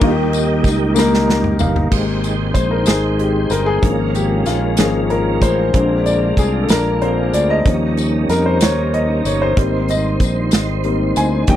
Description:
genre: slow gospel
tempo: 63 BPM (dotted quarters)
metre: 6/8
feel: straight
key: Ab major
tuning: A4 = 440 Hz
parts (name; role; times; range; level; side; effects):
- clear upright piano; accompaniment; 0.0-11.6 s; C3 to Bb5; -18 LUFS; left 3 dB; none
- tonewheel organ; sustained chords; 0.0-11.6 s; Eb3 to G5; -23 LUFS; right 4 dB; fast rotary speaker, chorus vibrato
- fingered electric bass; bass; 0.0-11.6 s; G1 to F2; -19 LUFS; equal; none
- natural country drum kit; drums; 0.0-11.6 s; crash cymbal, hi-hat, kick drum, ride cymbal, snare drum, toms; -17 LUFS; right 1 dB; none
- tambourine; percussion; 0.3-11.5 s; none; -29 LUFS; left 23 dB; none
- mellow French horn section; sustained chords; 1.9-11.6 s; G3 to F4; -26 LUFS; left 2 dB; none
room: light reverb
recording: dry, close 1970s-style studio recording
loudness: -14 LUFS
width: side -11 dB against mid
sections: 0.0-1.9 A section; 1.9-11.6 B section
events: tonewheel organ solo 0.0-1.9; drum fill 1.0-1.9; upright piano fill 1.0-1.9; upright piano solo 1.9-11.6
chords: 0.0 Eb; 1.9 Abmaj7; 3.8 Db6/Ab; 5.7 Bb7; 7.7 Eb7; 9.6 Abmaj7

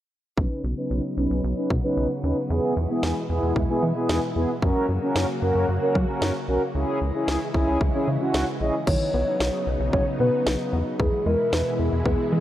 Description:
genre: synth-pop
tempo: 113 BPM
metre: 4/4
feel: straight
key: B major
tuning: A4 = 441 Hz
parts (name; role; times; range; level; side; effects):
- mellow synth brass; accompaniment; 0.4-8.7 s; B3 to B4; -25 LUFS; equal; chorus, low-pass filter, shimmer reverb
- string machine, violas; sustained chords; 0.4-12.4 s; B2 to F#4; -29 LUFS; equal; ensemble chorus, low-pass filter, shimmer reverb
- rubbery square bass; bass; 0.4-12.4 s; A#1 to F#3; -25 LUFS; equal; none
- house drum kit; drums; 0.4-12.2 s; crash cymbal, kick drum, snare drum; -27 LUFS; equal; none
- hollow clarinet-like synth lead; melody; 8.6-12.4 s; G#4 to D#5; -25 LUFS; equal; chorus, tape echo, shimmer reverb
- soft round pluck; arpeggios; 8.9-12.4 s; D#3 to C#4; -31 LUFS; left 3 dB; chorus, tape echo
room: light reverb, digital ambience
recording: dry, gritty hardware recording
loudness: -21 LUFS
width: side -13 dB against mid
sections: 0.4-8.9 A section; 8.9-12.4 B section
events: filter sweep 0.4-8.9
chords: 0.4 Badd9; 2.5 E; 4.6 F#; 6.7 C#m; 8.9 Badd9; 11.0 E

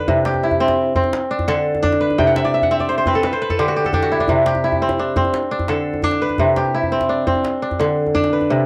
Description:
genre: west african traditional, West African string and xylophone music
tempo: 114 BPM (dotted quarters)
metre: 12/8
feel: straight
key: C lydian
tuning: A4 = 443 Hz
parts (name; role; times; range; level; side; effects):
- kora; arpeggios; 0.0-8.7 s; C3 to G5; -19 LUFS; equal; cassette tape, plate reverb
- djembe; percussion; 0.1-8.5 s; none; -27 LUFS; equal; none
room: wet booth ambience, RT60 0.2 s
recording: home recording on cassette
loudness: -18 LUFS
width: mono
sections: 0.0-8.5 A section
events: kora fill 2.2-4.3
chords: 0.1 C; 1.1 D5; 2.2 Cmaj9#11; 3.2 N.C.; 4.3 C; 5.3 D5; 6.4 C; 7.4 Bm

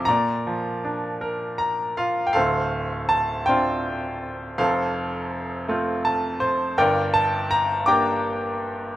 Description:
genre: classical, lyrical solo piano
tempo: 54 BPM (dotted quarters)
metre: 6/8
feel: rubato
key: D minor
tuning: A4 = 439 Hz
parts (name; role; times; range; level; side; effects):
- bright grand piano; solo; 0.0-9.0 s; D1 to D6; -21 LUFS; equal; none
room: light reverb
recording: minimal, uncompressed stereo recording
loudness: -21 LUFS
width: side -14 dB against mid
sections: 0.0-2.4 A section; 2.4-9.0 B section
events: grand piano fill 1.2-2.4, 5.7-6.8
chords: 0.1 Bb; 2.4 Dm7; 4.6 F; 6.8 Gm

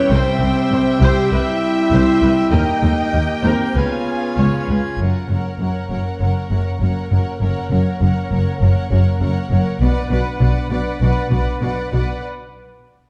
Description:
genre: cinematic, epic orchestral film score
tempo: 99 BPM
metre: 4/4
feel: straight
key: unclear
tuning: A4 = 440 Hz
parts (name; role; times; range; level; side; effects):
- rich symphonic violin section; melody; 0.0-12.2 s; F#5 to G#5; -33 LUFS; equal; none
- warm symphonic violin section; second line; 0.0-12.2 s; B4 to G5; -32 LUFS; equal; none
- rich symphonic viola section; accompaniment; 0.0-12.2 s; A4 to G5; -29 LUFS; equal; none
- dark French horn section; sustained chords; 0.0-12.2 s; A#3 to G4; -25 LUFS; equal; none
- pipe organ, full organ; sustained chords; 0.0-5.0 s; G3 to G#5; -26 LUFS; equal; none
- rich symphonic double bass section; bass; 0.1-12.0 s; F#1 to D#2; -22 LUFS; equal; none
- warm symphonic cello section; bass; 0.1-12.0 s; C2 to B2; -22 LUFS; equal; none
room: moderate scoring stage reverb, RT60 1.5 s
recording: dark, warm production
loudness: -18 LUFS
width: mono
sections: 0.0-5.0 A section; 5.0-13.1 B section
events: break 12.2-13.1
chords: 0.1 C; 2.5 D#; 3.8 C#7; 5.0 F#; 9.8 Bm

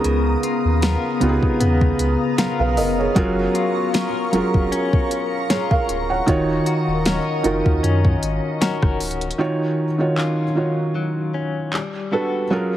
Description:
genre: contemporary R&B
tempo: 77 BPM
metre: 4/4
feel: swing 54% on 16ths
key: Eb minor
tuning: A4 = 440 Hz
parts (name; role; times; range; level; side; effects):
- felt-muted upright piano; accompaniment; 0.0-12.8 s; Db3 to Gb5; -21 LUFS; right 2 dB; none
- glassy FM pad; sustained chords; 0.0-9.4 s; B3 to Eb6; -26 LUFS; left 2 dB; ensemble chorus, built-in reverb, sidechain pumping
- direct-recorded clean electric guitar; arpeggios; 0.0-12.8 s; Db3 to A#4; -27 LUFS; left 5 dB; tremolo
- sub bass with octave; bass; 0.0-9.3 s; D1 to Db3; -22 LUFS; equal; none
- smooth R&B drum kit; drums; 0.0-11.9 s; handclaps, hi-hat, kick drum, rim click, snare drum; -21 LUFS; equal; none
room: light reverb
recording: heavily compressed radio sound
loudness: -17 LUFS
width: side -12 dB against mid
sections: 0.0-9.4 A section; 9.4-12.8 B section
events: none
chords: 0.0 Db13; 3.2 Gbmaj7; 6.3 Ebm7; 9.4 Ebm9; 11.7 Gmaj9

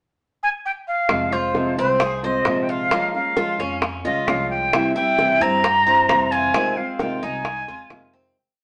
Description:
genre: latin, Cuban son and guajira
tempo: 132 BPM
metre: 4/4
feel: straight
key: F minor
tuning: A4 = 440 Hz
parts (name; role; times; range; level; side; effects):
- jazz flute; melody; 0.4-8.1 s; C5 to Bb5; -23 LUFS; equal; none
- nylon-string guitar; accompaniment; 1.1-8.4 s; C3 to F4; -28 LUFS; equal; none
- upright bass; bass; 1.1-8.3 s; F1 to G2; -36 LUFS; equal; none
- bongos; percussion; 1.1-8.1 s; none; -26 LUFS; equal; none
- Cuban tres; arpeggios; 1.3-8.3 s; Bb3 to C5; -28 LUFS; equal; none
room: wet studio reverb, RT60 0.8 s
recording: nothing above 10.5 kHz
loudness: -20 LUFS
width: mono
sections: 0.0-1.1 pickup bar; 1.1-8.4 A section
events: fade-out 6.5-8.4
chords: 0.0 N.C.; 1.1 Fm; 2.9 Bbm7; 4.7 C; 6.5 Fm7

